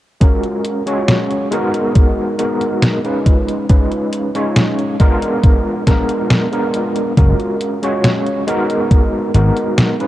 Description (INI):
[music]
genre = vaporwave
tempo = 69 BPM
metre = 4/4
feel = straight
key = F# major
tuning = A4 = 440 Hz
[part]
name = overdriven tine electric piano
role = accompaniment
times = 0.2-10.1 s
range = G#3 to C#5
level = -16 LUFS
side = equal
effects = fast tremolo, analog chorus, analog delay
[part]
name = detuned 8-bit digital drum machine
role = drums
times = 0.2-10.1 s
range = hi-hat, snare drum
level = -17 LUFS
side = equal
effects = overdrive
[part]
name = electronic kick drum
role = drums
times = 0.2-9.1 s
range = none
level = -11 LUFS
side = equal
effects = overdrive
[part]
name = vintage slap bass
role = bass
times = 7.2-9.5 s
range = F#1 to G#1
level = -12 LUFS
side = equal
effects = none
[sound]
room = light reverb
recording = dark, warm production, cassette tape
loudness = -13 LUFS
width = side -14 dB against mid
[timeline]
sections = 0.2-10.1 A section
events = none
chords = 0.2 F#maj9; 1.5 G#m9; 3.3 C#9/G#; 5.0 A#7b9; 7.2 F#maj9; 8.5 G#m9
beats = | 0.21 1.08 1.95 2.82 | 3.69 4.56 5.43 6.30 | 7.17 8.04 8.91 9.78